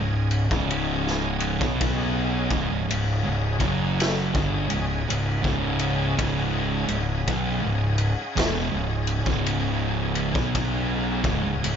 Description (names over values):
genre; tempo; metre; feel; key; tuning
stoner and doom metal; 55 BPM; 4/4; swing 64% on 8ths; unclear; A4 = 439 Hz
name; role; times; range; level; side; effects
bright tonewheel organ; sustained chords; 0.0-11.8 s; C#4 to D#5; -33 LUFS; equal; slow rotary speaker, overdrive, chorus vibrato
thick fuzz guitar; riff; 0.0-11.8 s; C#2 to B3; -28 LUFS; left 7 dB; distortion
thick fuzz guitar; riff; 0.0-11.8 s; C#2 to B3; -27 LUFS; right 8 dB; distortion
fuzz fingered electric bass; bass; 0.0-11.8 s; C#1 to B1; -30 LUFS; equal; overdrive
raw garage drum kit; drums; 0.3-11.8 s; kick drum, ride cymbal, snare drum; -28 LUFS; left 1 dB; none
room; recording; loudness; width
small room ambience; nothing above 7.5 kHz; -22 LUFS; side -8 dB against mid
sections
0.0-11.8 A section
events
none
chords
0.0 C#5